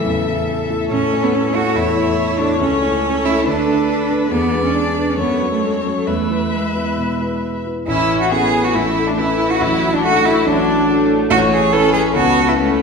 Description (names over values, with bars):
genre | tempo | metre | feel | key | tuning
quick classical-period movement for piano quartet | 139 BPM | 4/4 | rubato | A major | A4 = 440 Hz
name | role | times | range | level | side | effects
rich violin | melody | 0.0-12.8 s | D4 to E5 | -22 LUFS | left 4 dB | none
rich cello | second line | 0.0-12.8 s | C#3 to A4 | -18 LUFS | right 4 dB | none
dark concert grand piano | accompaniment | 0.0-12.8 s | A1 to E5 | -20 LUFS | left 2 dB | none
warm viola | accompaniment | 0.0-12.8 s | E3 to B4 | -22 LUFS | left 1 dB | none
room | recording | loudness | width
wet recital hall reverb, RT60 1.4 s | recorded in a church or concert hall | -14 LUFS | side -5 dB against mid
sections
0.0-7.9 A section; 7.9-12.8 B section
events
none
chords
0.0 A; 2.6 A/C#; 3.5 Bm7/D; 4.3 E7; 5.2 F#m; 6.1 E; 7.9 A; 9.6 D/A; 11.3 A; 12.2 A/C#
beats
0.06 0.48 | 0.91 1.33 1.75 2.17 | 2.60 3.04 3.46 3.88 | 4.31 4.75 5.18 5.62 | 6.08 6.53 6.98 7.43 | 7.88 8.31 8.75 9.18 | 9.61 10.04 10.47 10.89 | 11.31 11.73 12.16 12.59